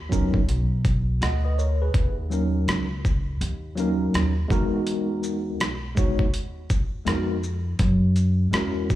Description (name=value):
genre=hip hop, jazz-hop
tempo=82 BPM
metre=4/4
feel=swing 62% on 16ths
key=unclear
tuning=A4 = 439 Hz
part: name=upright bass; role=bass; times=0.0-9.0 s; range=B1 to F#2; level=-25 LUFS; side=equal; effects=none
part: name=mellow tine electric piano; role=accompaniment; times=0.1-9.0 s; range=F#3 to F#5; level=-26 LUFS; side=equal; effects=medium stereo tremolo, slapback echo
part: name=boom bap sampler-style drum kit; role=drums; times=0.1-9.0 s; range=hi-hat, kick drum, rim click, shaker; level=-25 LUFS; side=equal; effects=overdrive
room=little or no reverb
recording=live gig heard through the venue's PA, club reverb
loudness=-21 LUFS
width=side -14 dB against mid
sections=0.0-9.0 A section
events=none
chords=0.0 G#m11 (rootless); 1.9 D#m7; 4.5 Emaj9#11; 7.8 F#9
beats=0.48 1.21 | 1.94 2.67 3.41 4.14 | 4.87 5.60 6.33 7.07 | 7.80 8.53